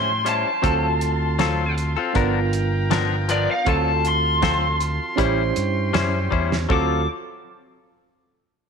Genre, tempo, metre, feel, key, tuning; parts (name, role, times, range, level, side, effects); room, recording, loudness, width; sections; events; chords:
straight-eighth soul blues; 79 BPM; 4/4; straight; A4 = 441 Hz
lead guitar through a small cranked amp; melody; 0.0-7.1 s; D5 to D6; -23 LUFS; left 1 dB; overdrive
reed electric piano; accompaniment; 0.0-7.1 s; B3 to B#4; -27 LUFS; right 11 dB; fast tremolo
bright horn section; sustained chords; 0.0-7.1 s; C#4 to C6; -30 LUFS; equal
direct-recorded clean electric guitar; stabs; 0.0-7.0 s; F3 to B#4; -25 LUFS; left 10 dB
fingered electric bass; bass; 0.0-7.1 s; G1 to A2; -24 LUFS; equal
cloth-damped thuddy drum kit; drums; 0.3-6.9 s; hi-hat, kick drum, snare drum; -26 LUFS; right 2 dB
moderate echo chamber reverb, RT60 1.7 s, small room ambience; 1960s-style stereo with parts hard left and right; -18 LUFS; side -6 dB against mid
0.0-6.7 A section; 6.7-8.7 B section
drum fill 6.3-6.7
0.0 A7#9; 0.6 D7#9; 2.2 G7#9; 3.7 D7#9; 5.2 A7#9; 6.7 D7#9